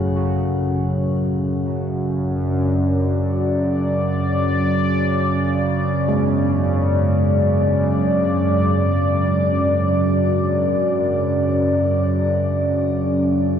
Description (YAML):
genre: dark ambient drone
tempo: free time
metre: none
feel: none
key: unclear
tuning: A4 = 440 Hz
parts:
  - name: carillon bells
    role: arpeggios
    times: 0.0-12.1 s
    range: A2 to F#4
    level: -28 LUFS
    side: right 3 dB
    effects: tape echo
  - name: analog drone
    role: drone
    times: 0.0-13.6 s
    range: F#2 to C#3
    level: -20 LUFS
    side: equal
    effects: chorus
  - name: bronze singing bowl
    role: texture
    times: 0.0-13.6 s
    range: none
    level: barely audible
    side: none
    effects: none
  - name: sweeping resonant pad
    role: sustained chords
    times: 0.4-13.6 s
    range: F#2 to D5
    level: -20 LUFS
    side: equal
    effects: chorus
room: wet huge ambient reverb, RT60 8.3 s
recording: dreamy mix soaked in reverb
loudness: -17 LUFS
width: side -8 dB against mid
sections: 0.0-13.6 A section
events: none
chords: 0.4 D/F#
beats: free time